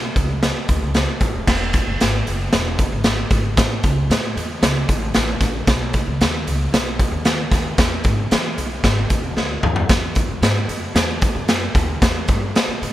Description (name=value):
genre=uptempo 1960s-style soul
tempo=114 BPM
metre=4/4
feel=straight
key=unclear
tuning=A4 = 437 Hz
part: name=upright bass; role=bass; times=0.0-12.9 s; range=D#1 to E3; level=-23 LUFS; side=equal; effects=none
part: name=raw garage drum kit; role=drums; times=0.2-12.9 s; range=crash cymbal, hi-hat, kick drum, snare drum, toms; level=-18 LUFS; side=equal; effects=none
room=little or no reverb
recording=none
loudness=-16 LUFS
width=side -14 dB against mid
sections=0.0-1.5 A section; 1.5-12.9 B section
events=drum fill 9.4-9.9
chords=none